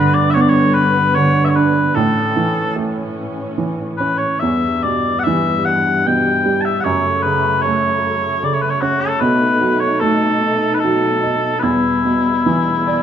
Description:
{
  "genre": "celtic folk, Celtic slow air",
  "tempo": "74 BPM",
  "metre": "3/4",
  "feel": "rubato",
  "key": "E dorian",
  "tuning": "A4 = 441 Hz",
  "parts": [
    { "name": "mellow small bagpipes", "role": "melody", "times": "0.0-13.0 s", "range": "E4 to A5", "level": "-17 LUFS", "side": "left 2 dB", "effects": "none" },
    { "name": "clear upright piano", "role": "accompaniment", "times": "0.0-13.0 s", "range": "E2 to D5", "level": "-18 LUFS", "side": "right 2 dB", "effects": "none" },
    { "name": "dark studio string section", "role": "sustained chords", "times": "0.0-13.0 s", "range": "E2 to D#4", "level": "-22 LUFS", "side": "equal", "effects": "none" }
  ],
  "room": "wet recital hall reverb, RT60 1.7 s",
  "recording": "minimal, uncompressed stereo recording",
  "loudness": "-14 LUFS",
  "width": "side -9 dB against mid",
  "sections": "0.0-13.0 A section",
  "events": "upright piano fill 12.4-13.0",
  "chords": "0.0 G; 2.0 A; 4.4 Em; 6.8 F#m; 9.2 B7; 11.6 Em"
}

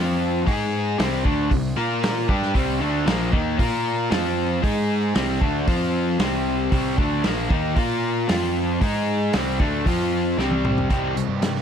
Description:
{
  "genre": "classic rock",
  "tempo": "115 BPM",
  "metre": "4/4",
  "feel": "straight",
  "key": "C minor",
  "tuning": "A4 = 440 Hz",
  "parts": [
    { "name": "crunchy overdriven guitar", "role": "riff", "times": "0.0-11.6 s", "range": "Bb2 to Bb4", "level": "-25 LUFS", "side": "left 12 dB", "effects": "none" },
    { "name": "raw garage guitar", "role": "riff", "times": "0.0-11.6 s", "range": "Bb2 to Bb4", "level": "-26 LUFS", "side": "right 12 dB", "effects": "overdrive" },
    { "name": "fuzz picked electric bass", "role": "bass", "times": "0.0-11.6 s", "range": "Bb1 to Bb2", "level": "-26 LUFS", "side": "equal", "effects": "overdrive" },
    { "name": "vintage drum kit", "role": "drums", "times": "0.5-11.6 s", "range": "hi-hat, kick drum, snare drum, toms", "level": "-25 LUFS", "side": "right 1 dB", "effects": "none" }
  ],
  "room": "small room ambience",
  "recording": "none",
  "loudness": "-19 LUFS",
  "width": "side -8 dB against mid",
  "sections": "0.0-10.9 A section",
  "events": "drum fill 10.4-10.9",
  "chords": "0.5 Ab5; 1.0 C5; 1.8 Bb5; 2.3 Cm; 3.6 Bb5; 4.1 F5; 4.6 Ab5; 5.2 C5; 5.7 F5; 6.2 Cm; 7.8 Bb5; 8.3 F5; 8.8 Ab5; 9.3 C5; 9.9 F5; 10.4 C5; 10.9 Cm"
}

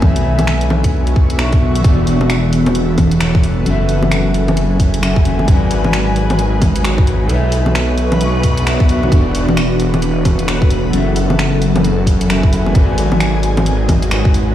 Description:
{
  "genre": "future garage",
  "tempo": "132 BPM",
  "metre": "4/4",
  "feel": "swing 61% on 16ths",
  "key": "unclear",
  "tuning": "A4 = 440 Hz",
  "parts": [
    { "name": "electric guitar at the edge of break-up", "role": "accompaniment", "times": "0.0-14.5 s", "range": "E3 to E5", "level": "-20 LUFS", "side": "left 2 dB", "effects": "sidechain pumping, ping-pong delay" },
    { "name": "ethereal airy pad", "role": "sustained chords", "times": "0.0-14.5 s", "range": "E3 to C#6", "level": "-19 LUFS", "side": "right 1 dB", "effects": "ensemble chorus, built-in reverb, sidechain pumping" },
    { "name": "swelling detuned saw bass", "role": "bass", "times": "0.0-14.5 s", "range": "E1 to B1", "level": "-16 LUFS", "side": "equal", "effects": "sidechain pumping" },
    { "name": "electronic kick drum", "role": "drums", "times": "0.0-14.3 s", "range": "none", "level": "-12 LUFS", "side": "equal", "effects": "none" },
    { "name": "garage drum kit", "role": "drums", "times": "0.0-14.5 s", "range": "bongos, finger snaps, hi-hat", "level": "-20 LUFS", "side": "left 1 dB", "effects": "none" },
    { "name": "backwards swelling texture", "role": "texture", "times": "0.0-14.5 s", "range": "B4 to E5", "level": "-29 LUFS", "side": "right 1 dB", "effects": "built-in reverb" }
  ],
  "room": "little or no reverb",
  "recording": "played on a big sound system in a bare room, large studio reverb, vinyl crackle",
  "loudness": "-11 LUFS",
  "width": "side -12 dB against mid",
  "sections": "0.0-1.8 A section; 1.8-14.5 B section",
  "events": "none",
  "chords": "0.0 Bm11; 1.8 E7sus4; 3.7 F#m7; 5.5 G#m7b5; 7.3 Bm11; 9.1 E7sus4; 10.9 F#m7; 12.8 G#m7b5"
}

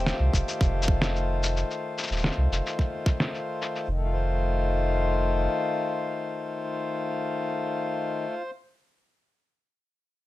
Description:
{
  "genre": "folktronica",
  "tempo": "110 BPM",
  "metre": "4/4",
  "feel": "straight",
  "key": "F mixolydian",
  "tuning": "A4 = 440 Hz",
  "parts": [
    { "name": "pedal harmonium", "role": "sustained chords", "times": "0.0-8.5 s", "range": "Eb3 to C5", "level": "-28 LUFS", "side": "left 2 dB", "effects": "none" },
    { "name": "warm sub bass", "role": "bass", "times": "0.0-5.5 s", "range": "Eb1 to C2", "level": "-26 LUFS", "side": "equal", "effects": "none" },
    { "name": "electronic snare drum and cabasa", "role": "drums", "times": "0.1-3.9 s", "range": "none", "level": "-29 LUFS", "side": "equal", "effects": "low-pass filter on perc, low-pass filter on snare" },
    { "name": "electronic kick drum", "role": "drums", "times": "0.3-3.2 s", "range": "none", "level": "-24 LUFS", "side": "equal", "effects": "none" }
  ],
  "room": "light reverb",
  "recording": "none",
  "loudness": "-25 LUFS",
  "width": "side -15 dB against mid",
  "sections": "0.0-3.9 A section; 3.9-8.2 B section",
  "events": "filter sweep on drum 0.0-3.9",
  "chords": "0.0 F7"
}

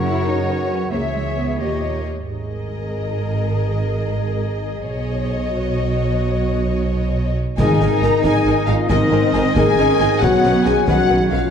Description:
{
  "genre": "cinematic, heroic adventure film score",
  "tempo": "91 BPM (dotted quarters)",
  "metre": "6/8",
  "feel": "straight",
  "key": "unclear",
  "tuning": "A4 = 440 Hz",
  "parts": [
    { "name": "warm symphonic violin section", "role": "melody", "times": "0.0-11.5 s", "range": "C#5 to Bb5", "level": "-26 LUFS", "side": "left 6 dB", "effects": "none" },
    { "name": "bright oboe", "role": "second line", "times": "0.0-2.0, 7.6-11.5 s", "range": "C#5 to F#5", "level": "-29 LUFS", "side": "right 1 dB", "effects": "none" },
    { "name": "clear clarinet", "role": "second line", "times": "0.0-2.0, 7.6-11.5 s", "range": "G4 to C#5", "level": "-28 LUFS", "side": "left 3 dB", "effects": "none" },
    { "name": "small flute group", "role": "second line", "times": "0.0-2.0, 7.6-11.4 s", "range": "Eb5 to Bb5", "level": "-27 LUFS", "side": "left 3 dB", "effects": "none" },
    { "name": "warm symphonic violin section", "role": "second line", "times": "0.0-11.4 s", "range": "A#4 to Ab5", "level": "-30 LUFS", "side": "left 3 dB", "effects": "none" },
    { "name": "rich studio viola section", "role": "accompaniment", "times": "0.0-11.4 s", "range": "C#4 to B4", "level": "-28 LUFS", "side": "equal", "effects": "none" },
    { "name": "mellow French horn section", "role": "sustained chords", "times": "0.0-2.1, 7.6-11.5 s", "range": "Eb4 to C#5", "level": "-21 LUFS", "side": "left 3 dB", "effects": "none" },
    { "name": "mellow trombone section", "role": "sustained chords", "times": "0.0-2.0, 7.6-11.5 s", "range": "A#2 to Eb4", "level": "-24 LUFS", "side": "right 1 dB", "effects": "none" },
    { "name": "rich symphonic double bass section", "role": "bass", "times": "0.0-11.4 s", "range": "Ab1 to F#2", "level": "-22 LUFS", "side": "right 2 dB", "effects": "none" },
    { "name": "warm symphonic cello section", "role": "bass", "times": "0.0-11.5 s", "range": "Ab2 to E4", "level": "-25 LUFS", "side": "right 2 dB", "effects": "none" },
    { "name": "timpani", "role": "percussion", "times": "0.0-0.2, 7.6-8.2 s", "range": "F#2 to Ab2", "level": "-24 LUFS", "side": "right 1 dB", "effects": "none" },
    { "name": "concert snare drum, clash cymbals and concert bass drum", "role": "drums", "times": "7.6-11.1 s", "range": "none", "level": "-25 LUFS", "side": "equal", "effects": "none" }
  ],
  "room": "wet scoring stage reverb, RT60 2.1 s",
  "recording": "dark, warm production",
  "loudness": "-16 LUFS",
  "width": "side -7 dB against mid",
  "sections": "0.0-2.3 A section; 2.3-7.6 B section; 7.6-11.5 C section",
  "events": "none",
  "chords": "0.0 F#; 0.9 C#m; 1.6 D#7; 2.3 Absus2; 4.9 Badd9; 7.6 Absus2; 10.2 Badd9"
}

